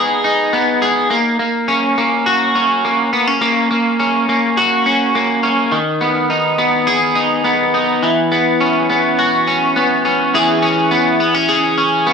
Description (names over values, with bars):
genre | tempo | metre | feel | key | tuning
dream pop | 104 BPM | 4/4 | straight | unclear | A4 = 439 Hz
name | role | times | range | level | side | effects
electric guitar at the edge of break-up | solo | 0.0-12.1 s | D#3 to G#4 | -12 LUFS | equal | analog chorus, digital delay
room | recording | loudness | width
moderate studio reverb, RT60 0.5 s | none | -12 LUFS | side -6 dB against mid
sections
0.0-1.1 A section; 1.1-10.3 B section; 10.3-12.1 A section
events
none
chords
0.0 B6; 1.1 F#/A#; 5.7 G#m/D#; 8.0 F#7sus4; 10.3 E6